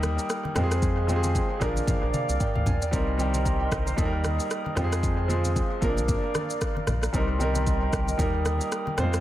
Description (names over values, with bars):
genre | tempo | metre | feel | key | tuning
afrobeats | 114 BPM | 4/4 | swing 58% on 16ths | F dorian | A4 = 440 Hz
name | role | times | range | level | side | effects
clear baby grand piano | accompaniment | 0.0-9.2 s | F3 to Bb5 | -29 LUFS | right 1 dB | dub echo
large flute ensemble | sustained chords | 0.0-9.2 s | Ab4 to Eb6 | -34 LUFS | right 1 dB | none
round analog bass | bass | 0.0-9.2 s | Bb1 to F2 | -27 LUFS | equal | none
afro-pop drum kit | drums | 0.0-9.2 s | kick drum, rim click, shaker, toms | -29 LUFS | equal | dub echo
congas | percussion | 0.0-9.1 s | none | -35 LUFS | left 2 dB | none
room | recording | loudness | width
small room ambience | echo-heavy mix | -23 LUFS | side -13 dB against mid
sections
0.0-9.2 A section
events
grand piano fill 1.3-2.9; drum fill 1.9-2.9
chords
0.0 Eb; 0.6 Fm; 1.6 Bb; 2.9 Cm7; 4.0 Eb; 4.8 Fm; 5.8 Bb; 7.1 Cm7; 8.2 Eb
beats
0.30 | 0.82 1.35 1.88 2.40 | 2.93 3.45 3.98 4.51 | 5.03 5.56 6.08 6.61 | 7.14 7.66 8.19 8.72